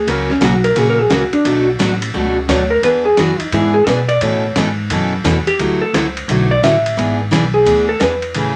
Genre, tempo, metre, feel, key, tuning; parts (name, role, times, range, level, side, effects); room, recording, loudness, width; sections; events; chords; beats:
country, western swing; 174 BPM; 4/4; swing 64% on 8ths; A4 = 440 Hz
vintage hollow-body jazz guitar; melody; 0.0-8.6 s; C#4 to E5; -17 LUFS; equal
upright bass; bass; 0.0-8.6 s; G#1 to B2; -23 LUFS; equal
picked steel-string acoustic guitar; accompaniment; 0.1-8.6 s; B2 to A4; -20 LUFS; equal
dusty soul sampler-style drum kit; drums; 0.1-8.4 s; hi-hat, ride cymbal, snare drum; -24 LUFS; equal
moderate studio ambience, RT60 0.5 s; -15 LUFS; mono
0.0-8.6 A section
hollow-body jazz guitar solo 0.0-8.6
0.1 F#; 1.5 Bm7; 2.8 E7; 4.2 Aadd9; 5.6 Dadd9; 7.0 E7
| 0.08 0.42 0.77 1.11 | 1.46 1.80 2.14 2.49 | 2.83 3.18 3.52 3.87 | 4.21 4.56 4.90 5.25 | 5.59 5.93 6.28 6.62 | 6.97 7.31 7.66 8.00 | 8.35